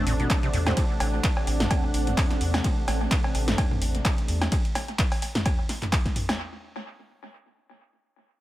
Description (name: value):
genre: acid house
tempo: 128 BPM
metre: 4/4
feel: swing 56% on 16ths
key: A dorian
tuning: A4 = 440 Hz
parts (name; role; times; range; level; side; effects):
- warm analog pad; sustained chords; 0.0-4.5 s; C3 to D4; -33 LUFS; equal; chorus, vintage 12-bit sampler grit, sidechain pumping
- liquid acid bass; riff; 0.0-0.7 s; A2 to C3; -31 LUFS; equal; chorus, overdrive, sidechain pumping, analog delay
- granular cloud pad; texture; 0.0-2.7 s; C4 to F#5; -35 LUFS; right 2 dB; built-in reverb, sidechain pumping
- round analog bass; bass; 0.1-4.5 s; A1 to E2; -26 LUFS; equal; sidechain pumping
- punchy analog drum machine; drums; 0.1-6.4 s; cowbell, handclaps, hi-hat, ride cymbal, snare drum, toms; -28 LUFS; equal; analog delay
- electronic kick drum; drums; 0.3-6.1 s; none; -25 LUFS; equal; none
- clear baby grand piano; stabs; 0.7 s; A3 to C5; -39 LUFS; right 2 dB; none
room: light reverb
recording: echo-heavy mix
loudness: -22 LUFS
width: side -15 dB against mid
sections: 0.0-6.4 A section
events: drop 0.0-6.4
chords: 0.0 Am